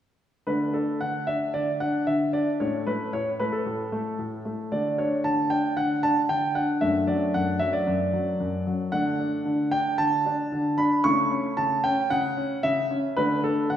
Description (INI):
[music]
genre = classical-period piano sonatina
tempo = 114 BPM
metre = 4/4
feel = straight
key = D major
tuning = A4 = 440 Hz
[part]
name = clear grand piano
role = solo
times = 0.5-13.8 s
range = F#2 to C#6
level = -23 LUFS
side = equal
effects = none
[sound]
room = wet recital hall reverb, RT60 1.5 s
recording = heard from further back in the room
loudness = -23 LUFS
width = side -10 dB against mid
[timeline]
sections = 0.5-13.8 A section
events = none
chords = 0.5 D5; 2.6 A; 4.7 D5; 6.8 D/F#; 8.9 D; 11.0 A/C#; 13.2 D5